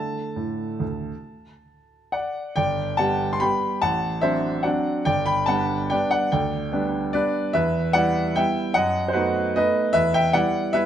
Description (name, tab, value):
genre	classical, piano waltz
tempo	131-158 BPM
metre	3/4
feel	rubato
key	G major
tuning	A4 = 440 Hz
part	clear baby grand piano	solo	0.0-10.9 s	G1 to C6	-20 LUFS	equal	none
room	moderate recital hall reverb, RT60 1.5 s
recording	close, detailed microphones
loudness	-20 LUFS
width	side -10 dB against mid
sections	0.0-2.6 A section; 2.6-10.9 B section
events	none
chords	0.0 D; 2.6 G; 3.8 D7/A; 5.1 G; 7.5 Em; 8.8 B7/F#; 10.0 Em